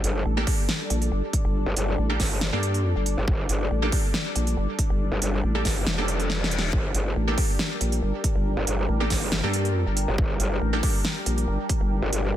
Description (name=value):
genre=heavy wobble dubstep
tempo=139 BPM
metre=4/4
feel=half-time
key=G minor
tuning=A4 = 440 Hz
part: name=supersaw pad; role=sustained chords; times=0.0-12.4 s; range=G3 to D5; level=-32 LUFS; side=left 1 dB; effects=phaser, sidechain pumping, low-pass filter
part: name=growl bass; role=bass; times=0.0-12.3 s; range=F1 to G1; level=-26 LUFS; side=equal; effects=chorus, overdrive
part: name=big-room dance drum kit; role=drums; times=0.0-12.2 s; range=hi-hat, snare drum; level=-28 LUFS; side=right 1 dB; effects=none
part: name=vowel-sweep wobble bass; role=bass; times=0.3-12.4 s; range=G1 to G2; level=-24 LUFS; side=equal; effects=chorus, overdrive
part: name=orchestra-hit-like synth stab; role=stabs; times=0.4-10.8 s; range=Bb3 to A4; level=-31 LUFS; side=right 1 dB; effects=built-in reverb, vintage 12-bit sampler grit, ping-pong delay
part: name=electronic kick drum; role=drums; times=0.5-11.8 s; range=none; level=-25 LUFS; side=equal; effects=none
part: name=reverse cymbal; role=sound effects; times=6.1-6.7 s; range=none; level=-35 LUFS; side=left 5 dB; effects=none
room=digital ambience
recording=dense, heavily limited modern master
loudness=-22 LUFS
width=side -12 dB against mid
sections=0.0-12.4 A section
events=reverse cymbal 6.1-6.7; drum fill 6.3-6.7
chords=0.0 Gmadd9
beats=0.26 0.69 1.12 | 1.55 1.98 2.41 2.85 | 3.28 3.71 4.14 4.57 | 5.00 5.43 5.87 6.30 | 6.73 7.16 7.59 8.03 | 8.46 8.89 9.32 9.75 | 10.18 10.61 11.05 11.48 | 11.91 12.34